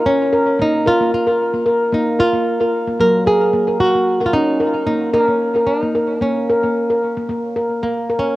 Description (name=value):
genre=world meditative, meditative tuned percussion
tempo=112 BPM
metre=4/4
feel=swing 54% on 16ths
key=Bb minor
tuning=A4 = 440 Hz
part: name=flamenco guitar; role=melody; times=0.0-8.4 s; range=Bb3 to Bb4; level=-18 LUFS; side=right 1 dB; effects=tape echo
part: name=handpan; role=arpeggios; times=0.0-8.4 s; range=Gb3 to Bb4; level=-17 LUFS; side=left 1 dB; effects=cassette tape, tape echo
room=moderate spring reverb, RT60 2.0 s, small room ambience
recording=home recording on cassette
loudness=-14 LUFS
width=side -17 dB against mid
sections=0.0-7.3 A section; 7.3-8.4 B section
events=none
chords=0.0 Bb5; 3.0 Gb; 5.1 Bbm; 7.3 N.C.